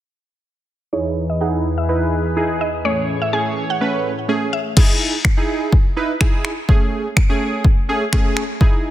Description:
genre	dance-pop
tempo	125 BPM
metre	4/4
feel	straight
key	E major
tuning	A4 = 441 Hz
part	mallet-like synth pluck	melody	0.9-4.6 s	C#5 to G#5	-24 LUFS	equal	chorus, sidechain pumping, low-pass filter, digital delay
part	warm analog keys	accompaniment	0.9-8.9 s	A3 to B4	-21 LUFS	right 2 dB	chorus, sidechain pumping, low-pass filter
part	chorused pulse-width pad	sustained chords	0.9-4.7 s	E2 to C#5	-22 LUFS	equal	sidechain pumping, low-pass filter
part	punchy analog drum machine	drums	4.8-8.7 s	crash cymbal, finger snaps, kick drum	-15 LUFS	equal	soft clipping on snare
room	light reverb, digital ambience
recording	dense, heavily limited modern master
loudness	-16 LUFS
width	side -13 dB against mid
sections	0.9-4.8 A section; 4.8-8.9 B section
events	filter sweep 0.9-4.8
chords	0.9 Emaj7; 2.8 Amaj7; 4.8 Emaj7; 6.7 Amaj7

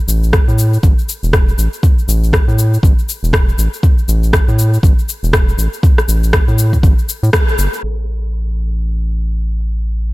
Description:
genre	afro house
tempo	120 BPM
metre	4/4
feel	swing 60% on 16ths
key	unclear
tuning	A4 = 441 Hz
part	round analog bass	bass	0.1-10.1 s	E1 to A2	-14 LUFS	equal	sidechain pumping
part	afro-pop drum kit	drums	0.1-10.1 s	cabasa, crash cymbal, rim click	-19 LUFS	left 1 dB	overdrive, low-pass filter on perc, low-pass filter on snare, low-pass filter on cymbals
part	electronic kick drum	drums	0.3-7.5 s	none	-11 LUFS	equal	none
room	little or no reverb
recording	low-pass filter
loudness	-11 LUFS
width	side -20 dB against mid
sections	0.0-7.8 A section; 7.8-10.1 B section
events	band accent 7.3; filter sweep 7.8-10.1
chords	none

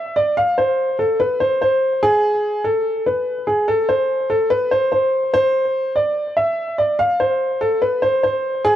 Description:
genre	hip hop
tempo	145 BPM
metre	4/4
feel	half-time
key	unclear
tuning	A4 = 444 Hz
part	dark baby grand piano	solo	0.0-8.8 s	G#4 to F5	-16 LUFS	equal	analog delay
room	light reverb, studio ambience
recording	dry, gritty hardware recording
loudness	-16 LUFS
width	side -11 dB against mid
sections	0.0-5.3 A section; 5.3-8.8 B section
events	none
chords	none

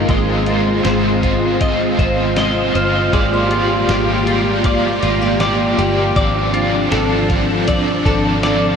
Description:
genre	dream pop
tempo	79 BPM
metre	4/4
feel	straight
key	Ab lydian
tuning	A4 = 440 Hz
part	biting overdriven guitar	accompaniment	0.0-8.8 s	F3 to Eb5	-21 LUFS	right 1 dB	tremolo, wide subtle chorus
part	string machine, full ensemble	sustained chords	0.0-8.8 s	F3 to G4	-18 LUFS	equal	ensemble chorus
part	direct-recorded clean electric guitar	arpeggios	0.0-8.8 s	Ab3 to Eb5	-20 LUFS	left 2 dB	ensemble chorus, ping-pong delay
part	vintage muted fingered electric bass	bass	0.0-8.8 s	G1 to Ab1	-22 LUFS	equal	none
part	vibraphone with medium mallets	texture	0.0-6.5 s	G5 to F6	-27 LUFS	right 2 dB	ping-pong delay
part	lo-fi sampler-style drum kit	drums	0.1-8.6 s	hi-hat, kick drum, snare drum	-21 LUFS	equal	none
room	wet cathedral reverb, RT60 6.0 s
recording	dreamy mix soaked in reverb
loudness	-13 LUFS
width	side -6 dB against mid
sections	0.0-8.8 A section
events	none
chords	0.1 Ab6; 3.1 Gm7/Ab; 6.2 Dm7/Ab

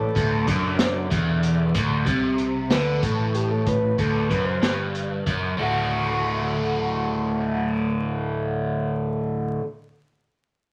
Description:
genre	psychedelic rock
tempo	63 BPM (dotted quarters)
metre	6/8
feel	straight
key	D mixolydian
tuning	A4 = 439 Hz
part	combo organ	melody	0.0-4.8 s	D4 to C5	-30 LUFS	equal	spring reverb
part	tonewheel organ	sustained chords	0.0-1.7 s	A4 to D6	-39 LUFS	equal	slow rotary speaker
part	biting overdriven guitar	riff	0.0-9.6 s	D2 to F#4	-26 LUFS	equal	phaser
part	picked electric bass	bass	0.0-9.6 s	D1 to D2	-32 LUFS	equal	none
part	crunchy breakbeat drum kit	drums	0.2-5.4 s	hi-hat, kick drum, snare drum	-28 LUFS	equal	none
room	light reverb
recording	vinyl crackle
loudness	-24 LUFS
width	mono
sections	0.0-5.6 A section; 5.6-9.4 B section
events	transistor combo organ solo 0.0-5.6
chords	0.0 Dsus2; 5.6 D

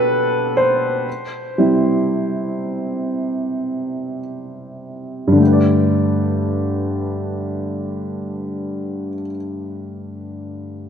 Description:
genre	pop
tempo	free time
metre	none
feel	none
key	G major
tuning	A4 = 438 Hz
part	warm baby grand piano	accompaniment	0.0-10.9 s	G2 to D5	-18 LUFS	equal	none
room	moderate lush hall reverb, RT60 2.7 s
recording	nothing above 10.9 kHz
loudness	-17 LUFS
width	side -8 dB against mid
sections	0.0-5.4 A section; 5.4-10.2 B section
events	slowing down 0.0-5.4; grand piano solo 0.0-5.4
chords	0.0 Bm7; 1.1 C; 5.4 Gadd9

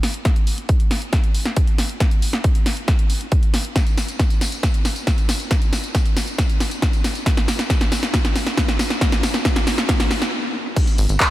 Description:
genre	uplifting trance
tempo	137 BPM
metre	4/4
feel	straight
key	unclear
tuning	A4 = 439 Hz
part	punchy analog drum machine	drums	0.0-11.3 s	crash cymbal, handclaps, hi-hat, snare drum, tambourine	-22 LUFS	equal	none
part	electronic kick drum	drums	0.3-11.3 s	none	-18 LUFS	equal	overdrive
part	tight sequencer bass	bass	11.0-11.2 s	G#1	-18 LUFS	equal	sidechain pumping
room	light reverb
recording	none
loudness	-17 LUFS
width	side -15 dB against mid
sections	0.0-10.8 A section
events	build-up 0.0-10.8; drum fill 0.0-10.3; stop 10.3-10.8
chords	none

